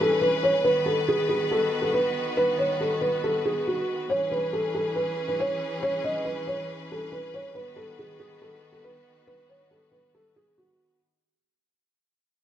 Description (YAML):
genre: hip hop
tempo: 139 BPM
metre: 4/4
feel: half-time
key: unclear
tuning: A4 = 439 Hz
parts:
  - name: felt-muted upright piano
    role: melody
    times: 0.0-11.0 s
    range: F#4 to D#5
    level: -25 LUFS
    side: equal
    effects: low-pass filter
  - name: dark chamber string section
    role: sustained chords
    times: 0.0-11.0 s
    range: D#3 to B4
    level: -31 LUFS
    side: left 2 dB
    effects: none
room: light reverb, studio reverb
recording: none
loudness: -23 LUFS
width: side -10 dB against mid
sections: 0.0-11.0 A section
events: fade-out 0.0-11.0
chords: 0.0 C#m7; 0.6 B; 4.1 C#m7; 7.6 B